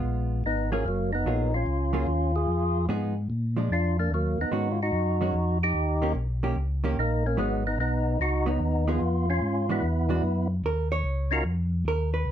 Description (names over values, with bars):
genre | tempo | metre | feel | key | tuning
soul jazz organ trio | 147 BPM | 4/4 | swing 67% on 8ths | Eb minor | A4 = 437 Hz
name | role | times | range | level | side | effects
hollow-body jazz guitar | accompaniment | 0.0-12.3 s | Eb3 to Db5 | -30 LUFS | right 3 dB | none
mellow tonewheel organ | bass | 0.0-12.3 s | Gb1 to Bb2 | -27 LUFS | equal | chorus vibrato, slow rotary speaker
percussive tonewheel organ | melody | 0.5-11.4 s | Gb3 to Bb4 | -27 LUFS | equal | slow rotary speaker, overdrive
room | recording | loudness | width
light reverb | none | -24 LUFS | side -10 dB against mid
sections
0.0-10.6 A section; 10.6-12.3 B section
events
hollow-body jazz guitar solo 10.6-12.3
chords
0.0 Db7; 0.8 Gbmaj9; 2.5 Fm7b5; 3.3 Bb7; 4.1 Ebm11; 5.7 Eb7; 7.4 Abm7; 9.0 Fdim; 9.8 E9; 10.6 Eb7sus2